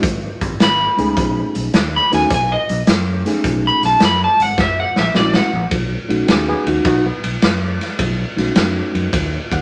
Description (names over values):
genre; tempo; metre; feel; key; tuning
electric blues shuffle; 106 BPM; 4/4; swing 68% on 8ths; B mixolydian; A4 = 435 Hz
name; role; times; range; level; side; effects
reed electric piano; accompaniment; 0.0-9.6 s; G#3 to F#5; -21 LUFS; equal; none
fingered electric bass; bass; 0.0-9.6 s; F#1 to F#2; -25 LUFS; equal; none
raw garage drum kit; drums; 0.0-9.6 s; hi-hat, kick drum, ride cymbal, snare drum; -21 LUFS; equal; none
electric slide guitar; melody; 0.6-5.7 s; D5 to B5; -18 LUFS; equal; none
room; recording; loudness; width
moderate studio reverb, RT60 0.6 s; none; -16 LUFS; mono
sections
0.0-5.7 A section; 5.7-9.6 A section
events
electric slide guitar solo 0.0-5.7; drum fill 4.6-5.7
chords
0.0 E (rootless); 1.2 B9; 4.6 F#9; 5.7 B9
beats
0.04 0.60 | 1.17 1.74 2.31 2.88 | 3.44 4.01 4.58 5.15 | 5.72 6.29 6.85 7.42 | 7.99 8.56 9.13